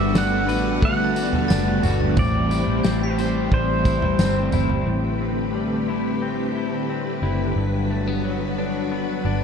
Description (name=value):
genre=dream pop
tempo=89 BPM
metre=4/4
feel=straight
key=A dorian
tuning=A4 = 440 Hz
part: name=pedal steel guitar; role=melody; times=0.0-4.5 s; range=C5 to F#5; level=-27 LUFS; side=right 2 dB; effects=ping-pong delay
part: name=raw garage guitar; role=accompaniment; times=0.0-4.9 s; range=A2 to C5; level=-30 LUFS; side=right 2 dB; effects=overdrive, harmonic tremolo, analog chorus
part: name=string machine, violins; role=sustained chords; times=0.0-9.4 s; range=D3 to B4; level=-25 LUFS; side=right 1 dB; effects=ensemble chorus
part: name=electric guitar at the edge of break-up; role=arpeggios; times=0.0-9.4 s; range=G2 to C5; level=-26 LUFS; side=left 6 dB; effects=lush chorus, ping-pong delay
part: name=vintage muted fingered electric bass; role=bass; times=0.0-9.4 s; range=F#1 to A1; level=-26 LUFS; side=equal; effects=none
part: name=glockenspiel with hard plastic mallets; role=texture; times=0.0-4.4 s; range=D6 to C7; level=-38 LUFS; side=right 1 dB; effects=ping-pong delay
part: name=loose indie drum kit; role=drums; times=0.2-4.9 s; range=kick drum, snare drum, tambourine, toms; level=-23 LUFS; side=right 1 dB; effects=none
room=moderate huge ambient reverb, RT60 3.9 s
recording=dark, warm production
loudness=-19 LUFS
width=side -7 dB against mid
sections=0.0-4.9 A section; 4.9-9.4 B section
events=none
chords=0.0 Gmaj9; 2.2 Am7; 4.9 Am11; 7.6 Gmaj7